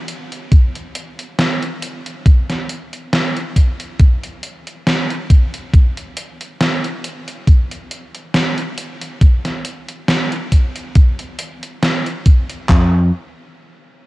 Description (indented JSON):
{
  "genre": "vaporwave",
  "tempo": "69 BPM",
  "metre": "4/4",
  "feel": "swing 54% on 16ths",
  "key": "unclear",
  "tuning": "A4 = 442 Hz",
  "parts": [
    { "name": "gated 80s digital drum machine", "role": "drums", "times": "0.1-12.7 s", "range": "hi-hat, snare drum", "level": "-20 LUFS", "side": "equal", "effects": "gated reverb, gated reverb snare" },
    { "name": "gated 80s digital drum machine", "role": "drums", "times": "0.5-12.9 s", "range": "handclaps, kick drum", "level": "-10 LUFS", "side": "equal", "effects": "gated reverb" },
    { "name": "fretless electric bass", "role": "bass", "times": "12.7-13.1 s", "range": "F2", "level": "-12 LUFS", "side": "equal", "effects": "analog chorus" }
  ],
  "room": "little or no reverb",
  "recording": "cassette tape",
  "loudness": "-14 LUFS",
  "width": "side -19 dB against mid",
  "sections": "0.0-12.7 A section; 12.7-14.1 B section",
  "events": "none",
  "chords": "none"
}